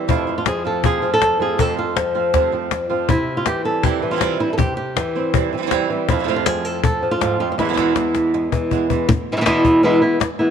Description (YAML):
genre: flamenco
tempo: 160 BPM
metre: 4/4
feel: straight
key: unclear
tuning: A4 = 438 Hz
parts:
  - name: flamenco guitar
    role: melody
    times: 0.0-10.5 s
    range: E2 to A4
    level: -18 LUFS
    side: equal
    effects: none
  - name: flamenco guitar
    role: stabs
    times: 0.0-9.1 s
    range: E2 to F4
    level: -24 LUFS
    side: right 11 dB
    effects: none
  - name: cajon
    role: percussion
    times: 0.1-10.4 s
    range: none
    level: -21 LUFS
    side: left 5 dB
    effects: none
room: moderate plate reverb, RT60 2.4 s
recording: 1960s-style stereo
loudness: -16 LUFS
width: side -8 dB against mid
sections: 0.0-9.1 A section; 9.1-10.5 B section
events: drum fill 7.6-9.1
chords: 0.1 F; 3.1 C; 6.1 F; 7.6 E